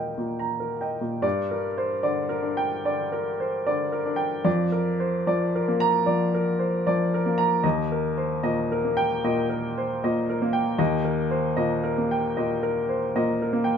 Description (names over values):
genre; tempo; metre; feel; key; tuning
neoclassical minimalist piano; 75 BPM; 4/4; rubato; G minor; A4 = 440 Hz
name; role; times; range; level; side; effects
warm upright piano; solo; 0.0-13.8 s; Eb2 to Bb5; -22 LUFS; equal; none
room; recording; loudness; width
moderate small room reverb, RT60 0.5 s; band playing live in one room; -22 LUFS; side -7 dB against mid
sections
0.0-1.2 A section; 1.2-13.8 B section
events
none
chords
0.0 Eb; 1.2 Gm; 4.5 Bb/F; 7.6 Eb